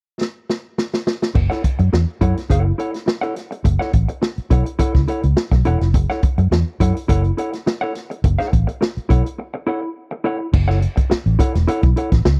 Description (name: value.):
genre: funk.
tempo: 105 BPM.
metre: 4/4.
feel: straight.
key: F# minor.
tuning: A4 = 440 Hz.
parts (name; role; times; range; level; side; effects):
vintage drum kit; drums; 0.2-12.4 s; crash cymbal, hi-hat, kick drum, snare drum; -20 LUFS; equal; none.
mellow electric guitar; accompaniment; 1.3-12.3 s; E4 to F#5; -26 LUFS; equal; none.
vintage muted fingered electric bass; bass; 1.4-12.4 s; E1 to F#2; -19 LUFS; equal; none.
room: small room reverb.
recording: dry, close 1970s-style studio recording.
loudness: -19 LUFS.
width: mono.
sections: 0.0-1.4 A section; 1.4-10.5 B section; 10.5-12.4 C section.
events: drum fill 0.2-1.4; break 9.4-10.5.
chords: 0.0 N.C.; 1.4 F#m7.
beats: 0.21 0.78 | 1.35 1.93 2.50 3.08 | 3.65 4.22 4.80 5.37 | 5.94 6.52 7.09 7.67 | 8.24 8.81 9.39 9.96 | 10.53 11.11 11.68 12.25.